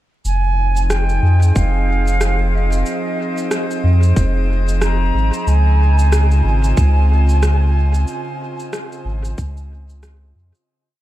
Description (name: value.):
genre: ambient dub.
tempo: 92 BPM.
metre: 4/4.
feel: swing 59% on 16ths.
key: F minor.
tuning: A4 = 445 Hz.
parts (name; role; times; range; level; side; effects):
mellow concert flute; melody; 0.2-10.0 s; Eb5 to Bb5; -24 LUFS; right 2 dB; dub echo.
warm sub bass; bass; 0.2-10.5 s; F1 to F2; -14 LUFS; equal; none.
electronic cabasa and rim click; drums; 0.2-10.7 s; none; -27 LUFS; equal; overdrive, dub echo.
airy breathy pad; sustained chords; 0.5-10.7 s; Db3 to Eb5; -26 LUFS; right 1 dB; chorus.
drifting glass-harmonics texture; texture; 0.8-10.7 s; C4 to C5; -29 LUFS; equal; chorus, built-in reverb.
electronic kick drum; drums; 1.6-9.5 s; none; -18 LUFS; equal; overdrive.
room: digital ambience.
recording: vinyl crackle.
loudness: -13 LUFS.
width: side -14 dB against mid.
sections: 0.2-10.7 groove.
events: fade-out 7.2-10.7.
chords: 0.2 Fm7; 5.5 Dbmaj9.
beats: | 0.25 0.90 1.55 2.21 | 2.86 3.51 4.16 4.82 | 5.47 6.12 6.77 7.42 | 8.08 8.73 9.38 10.03.